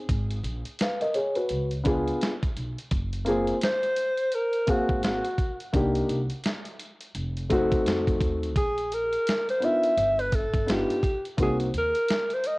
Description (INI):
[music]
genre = hip hop, jazz-hop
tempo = 85 BPM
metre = 4/4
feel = swing 60% on 16ths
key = unclear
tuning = A4 = 438 Hz
[part]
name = dark concert grand piano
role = accompaniment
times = 0.0-11.7 s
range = A3 to F5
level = -26 LUFS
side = left 1 dB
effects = cassette tape
[part]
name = upright bass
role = bass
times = 0.1-11.9 s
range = F1 to F2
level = -31 LUFS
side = equal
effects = none
[part]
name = dusty soul sampler-style drum kit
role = drums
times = 0.1-12.6 s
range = hi-hat, kick drum, snare drum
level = -29 LUFS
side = equal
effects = cassette tape
[part]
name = mellow alto saxophone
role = melody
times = 3.6-12.6 s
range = Gb4 to E5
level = -26 LUFS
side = equal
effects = analog delay
[sound]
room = light reverb, studio reverb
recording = home recording on cassette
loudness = -24 LUFS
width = side -23 dB against mid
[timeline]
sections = 0.0-12.6 A section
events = none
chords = 0.1 Absus2; 1.5 Db7b9; 2.9 Gbmaj9#11; 5.7 Cm7; 7.1 F7b9; 8.6 Bb5; 10.0 G7b13; 11.4 Cm7b5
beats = | 0.09 0.80 1.50 2.21 | 2.91 3.62 4.33 5.03 | 5.74 6.44 7.15 7.85 | 8.56 9.27 9.97 10.68 | 11.38 12.09